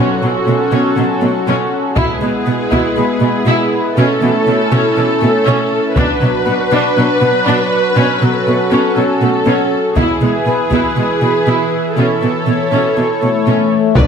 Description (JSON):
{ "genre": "cinematic, hybrid orchestral and electronic film score", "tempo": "120 BPM", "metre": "4/4", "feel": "straight", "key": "unclear", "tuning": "A4 = 440 Hz", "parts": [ { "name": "rich symphonic viola section", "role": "accompaniment", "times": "0.0-14.0 s", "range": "E3 to B4", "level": "-16 LUFS", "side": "equal", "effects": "none" }, { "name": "chorused pulse-width pad", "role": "sustained chords", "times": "0.0-14.1 s", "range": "E3 to D5", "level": "-16 LUFS", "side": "left 1 dB", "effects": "none" }, { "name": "rich symphonic cello section", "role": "bass", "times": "0.0-14.1 s", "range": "B2", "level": "-16 LUFS", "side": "right 2 dB", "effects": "none" }, { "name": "taiko ensemble", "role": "drums", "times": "2.0-2.9, 6.0-6.9, 10.0-10.9, 14.0-14.1 s", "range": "none", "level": "-18 LUFS", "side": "left 1 dB", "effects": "none" }, { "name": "warm French horn section", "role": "sustained chords", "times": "13.2-14.1 s", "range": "A3 to D4", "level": "-14 LUFS", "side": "left 10 dB", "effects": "none" }, { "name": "rich symphonic violin section", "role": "melody", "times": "14.0 s", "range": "D5", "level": "-22 LUFS", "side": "left 5 dB", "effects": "none" }, { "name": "rich symphonic violin section", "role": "second line", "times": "14.0 s", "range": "B4", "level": "-21 LUFS", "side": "left 7 dB", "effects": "none" }, { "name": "punchy sub bass", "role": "bass", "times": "14.0-14.1 s", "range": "B1", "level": "-17 LUFS", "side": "left 1 dB", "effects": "none" }, { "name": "rich symphonic double bass section", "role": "bass", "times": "14.0-14.1 s", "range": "B1", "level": "-20 LUFS", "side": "right 3 dB", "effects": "none" }, { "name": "impact", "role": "sound effects", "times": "14.0-14.1 s", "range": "none", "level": "-28 LUFS", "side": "left 1 dB", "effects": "none" } ], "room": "moderate scoring stage reverb, RT60 2.0 s", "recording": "none", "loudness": "-11 LUFS", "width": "side -6 dB against mid", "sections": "0.0-14.0 A section", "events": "build-up 0.0-14.0", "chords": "0.0 F#m/B; 2.0 E/B; 4.0 A/B; 6.0 Bm; 8.0 F#m/B; 10.0 E/B; 12.0 A/B" }